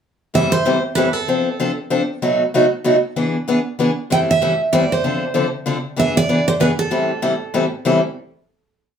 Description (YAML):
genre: jazz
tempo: 192 BPM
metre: 3/4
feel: swing 59% on 8ths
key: A minor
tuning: A4 = 437 Hz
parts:
  - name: picked steel-string acoustic guitar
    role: accompaniment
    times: 0.3-8.0 s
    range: A2 to A4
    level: -17 LUFS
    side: left 1 dB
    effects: none
  - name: picked steel-string acoustic guitar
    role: melody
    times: 0.4-1.8, 4.1-7.5 s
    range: A4 to G5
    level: -18 LUFS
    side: right 3 dB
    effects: plate reverb
room: wet studio reverb, RT60 0.6 s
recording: heard from further back in the room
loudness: -16 LUFS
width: side -8 dB against mid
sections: 0.3-7.8 A section; 7.8-8.8 final chord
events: none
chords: 0.3 Am7; 1.3 F6; 2.2 B7; 3.2 E7; 4.1 Am7; 5.0 Dm7; 6.0 E7; 6.9 Am7